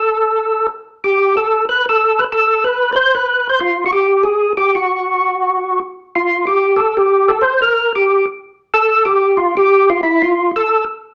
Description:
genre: jazz.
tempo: 187 BPM.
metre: 4/4.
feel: swing 61% on 8ths.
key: unclear.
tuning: A4 = 440 Hz.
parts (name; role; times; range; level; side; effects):
percussive tonewheel organ; solo; 0.0-10.8 s; E4 to C5; -14 LUFS; equal; slow rotary speaker, overdrive, chorus vibrato.
room: wet studio reverb, RT60 0.7 s.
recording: none.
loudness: -15 LUFS.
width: mono.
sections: 0.0-6.2 A section; 6.2-11.1 A section.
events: none.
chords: none.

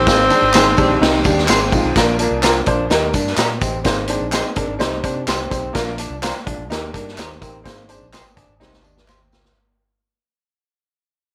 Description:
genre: uptempo 1960s-style soul.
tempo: 126 BPM.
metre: 4/4.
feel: straight.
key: Bb mixolydian.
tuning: A4 = 440 Hz.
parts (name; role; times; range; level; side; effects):
warm tenor saxophone; melody; 0.0-1.5 s; C4; -18 LUFS; equal; none.
vintage muted fingered electric bass; bass; 0.0-9.5 s; Ab1 to C3; -28 LUFS; equal; none.
dark upright piano; accompaniment; 0.1-9.8 s; Eb3 to Eb6; -24 LUFS; equal; none.
electric guitar through a small old amp; riff; 0.1-9.5 s; Bb3 to Eb4; -28 LUFS; equal; none.
vintage drum kit; drums; 0.1-9.6 s; hi-hat, kick drum, ride cymbal, snare drum; -22 LUFS; equal; none.
tambourine and handclaps; percussion; 0.1-9.4 s; none; -29 LUFS; equal; none.
electric guitar through a small old amp; stabs; 0.5-9.2 s; D4 to C5; -24 LUFS; equal; lush chorus.
room: little or no reverb.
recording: faint mains hum.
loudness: -17 LUFS.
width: mono.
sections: 0.0-2.0 A section; 2.0-9.6 B section.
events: fade-out 2.0-9.6; drum fill 8.6-9.6.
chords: 0.1 Ab; 1.0 Cm; 1.5 Ab; 2.0 Bb; 2.9 Eb; 3.9 Ab; 4.8 Cm; 5.8 Bb; 6.7 Eb; 7.7 Ab; 8.6 Cm.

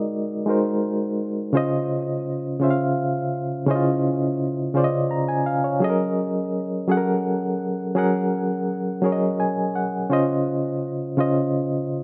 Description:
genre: R&B.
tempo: 56 BPM (dotted quarters).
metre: 6/8.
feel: straight.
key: Db major.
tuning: A4 = 441 Hz.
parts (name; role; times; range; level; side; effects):
reed electric piano; solo; 0.0-12.0 s; Db3 to Bb5; -23 LUFS; equal; overdrive, fast tremolo.
room: moderate plate reverb, RT60 2.6 s.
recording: dark, warm production, low-pass filter.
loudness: -23 LUFS.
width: mono.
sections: 0.0-1.5 A section; 1.5-12.0 B section.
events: filter sweep 0.0-1.5; reed electric piano fill 9.0-10.1.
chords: 0.0 Ab9; 1.5 Dbmaj7; 5.8 Gb69; 10.1 Dbmaj7.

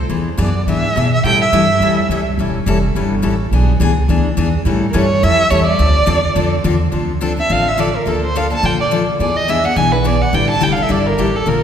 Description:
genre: acoustic string swing (jazz manouche).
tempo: 212 BPM.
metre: 4/4.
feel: swing 57% on 8ths.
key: unclear.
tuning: A4 = 440 Hz.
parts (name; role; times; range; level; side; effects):
upright bass; bass; 0.0-11.6 s; E1 to B2; -17 LUFS; right 1 dB; none.
picked steel-string acoustic guitar; accompaniment; 0.1-11.6 s; D3 to A4; -18 LUFS; left 4 dB; none.
warm violin; melody; 0.4-2.2, 4.9-11.6 s; G4 to A5; -16 LUFS; right 2 dB; none.
room: wet concert hall reverb, RT60 2.1 s.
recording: recorded in a church or concert hall.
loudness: -13 LUFS.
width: side -8 dB against mid.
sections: 0.0-6.9 A section; 6.9-11.6 B section.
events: violin solo 6.9-11.6.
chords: 0.1 E7; 1.2 A7; 3.5 E7; 4.7 A7; 5.8 Dm7; 8.1 Bbmaj7/D; 9.2 E7; 10.3 A7sus4.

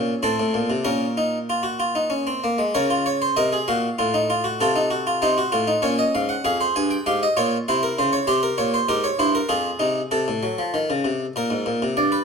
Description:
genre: classical, baroque-style 3-part fugue for harpsichord.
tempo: 97 BPM.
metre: 3/4.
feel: straight.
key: Bb minor.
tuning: A4 = 439 Hz.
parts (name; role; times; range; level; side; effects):
harpsichord; solo; 0.0-12.2 s; F2 to Ab5; -19 LUFS; equal; none.
room: moderate stone room reverb, RT60 1.1 s.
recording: minimal, uncompressed stereo recording.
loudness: -19 LUFS.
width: side -5 dB against mid.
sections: 0.0-2.8 A section; 2.8-10.1 B section; 10.1-12.2 A section.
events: none.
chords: 0.2 Am; 0.9 Bbm; 4.0 F/A; 4.6 F7/C; 5.8 Bbm; 6.4 Fm; 7.7 C; 8.3 C7; 9.5 Fm; 10.1 F7; 11.4 Abadd9.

